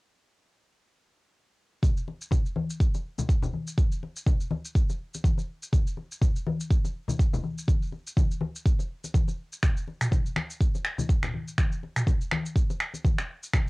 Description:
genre	house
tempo	123 BPM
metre	4/4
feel	swing 56% on 16ths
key	none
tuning	none
part	afro-pop drum kit	drums	1.8-13.7 s	finger snaps, shaker, toms	-33 LUFS	equal	overdrive, cassette tape
part	electronic kick drum	drums	1.8-13.6 s	none	-23 LUFS	equal	cassette tape
part	congas	percussion	1.8-13.6 s	none	-32 LUFS	left 3 dB	none
room	little or no reverb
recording	home recording on cassette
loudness	-25 LUFS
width	side -24 dB against mid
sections	1.8-13.7 A section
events	none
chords	none

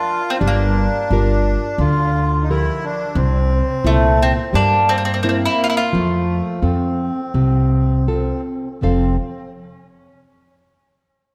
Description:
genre	fado-style ballad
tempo	86 BPM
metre	4/4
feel	rubato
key	F major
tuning	A4 = 440 Hz
part	mandolin	melody	0.0-8.1 s	A3 to F4	-21 LUFS	equal	none
part	accordion	second line	0.0-9.2 s	A3 to F4	-26 LUFS	equal	tape echo
part	nylon-string guitar	accompaniment	0.0-9.2 s	F2 to F5	-23 LUFS	equal	none
part	upright bass	bass	0.4-9.2 s	F1 to G2	-21 LUFS	equal	none
room	moderate recital hall reverb, RT60 1.7 s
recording	none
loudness	-18 LUFS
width	mono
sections	0.0-8.8 A section; 8.8-11.3 B section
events	none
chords	0.4 Gm7; 3.2 C7; 5.9 F

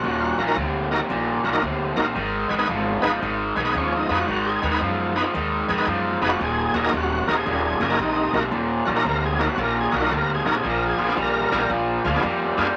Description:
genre	blues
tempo	113 BPM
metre	4/4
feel	swing 66% on 8ths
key	Eb harmonic minor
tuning	A4 = 440 Hz
part	bright tonewheel organ	accompaniment	0.0-12.7 s	Bb3 to Cb5	-26 LUFS	equal	slow rotary speaker, overdrive, chorus vibrato
part	raw garage guitar	riff	0.0-12.7 s	Eb2 to G3	-25 LUFS	equal	overdrive
part	upright bass	bass	0.0-12.7 s	Eb1 to Gb2	-32 LUFS	equal	none
room	wet studio reverb, RT60 0.6 s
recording	none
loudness	-22 LUFS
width	mono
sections	0.0-12.8 A section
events	none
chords	0.0 Ebm; 2.2 Abm; 6.4 Ebm; 10.6 Bb7b9

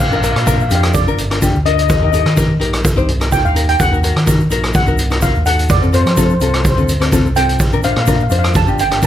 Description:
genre	calypso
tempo	126 BPM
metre	4/4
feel	swing 53% on 16ths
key	Bb major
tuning	A4 = 440 Hz
part	steel pan	melody	0.0-9.1 s	C5 to A5	-18 LUFS	equal	none
part	fingered electric bass	bass	0.0-9.1 s	G1 to F3	-16 LUFS	equal	none
part	ukulele	accompaniment	0.1-9.1 s	C4 to C5	-20 LUFS	left 5 dB	none
part	tube shaker	percussion	0.1-9.1 s	none	-29 LUFS	right 6 dB	none
part	street-band drum kit	drums	0.2-9.1 s	hi-hat, kick drum, rim click	-16 LUFS	equal	none
room	light reverb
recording	none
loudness	-11 LUFS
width	side -11 dB against mid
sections	0.0-9.1 A section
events	none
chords	0.0 Bb; 1.9 Eb; 3.8 Ebm; 5.7 F; 7.6 Bbadd9

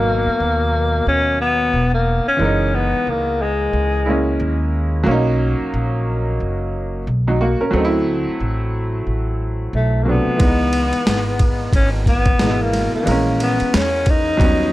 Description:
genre	hip hop, jazz-hop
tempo	90 BPM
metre	4/4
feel	swing 60% on 16ths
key	G# minor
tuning	A4 = 438 Hz
part	breathy tenor saxophone	melody	0.0-4.4, 9.8-14.7 s	G#3 to D#4	-19 LUFS	left 2 dB	plate reverb, tape echo
part	bright upright piano	accompaniment	0.0-14.7 s	B2 to A#4	-21 LUFS	right 1 dB	plate reverb
part	upright bass	bass	0.0-14.7 s	E1 to E2	-21 LUFS	equal	none
part	boom bap sampler-style drum kit	drums	10.4-14.6 s	hi-hat, kick drum, ride cymbal, snare drum	-19 LUFS	equal	none
room	light reverb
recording	dark, warm production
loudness	-16 LUFS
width	side -16 dB against mid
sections	0.0-14.7 A section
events	none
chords	0.0 G#m9 (rootless); 2.4 F#13; 5.1 Bmaj9; 7.7 D9; 10.4 C#m9; 13.1 A#m7b5

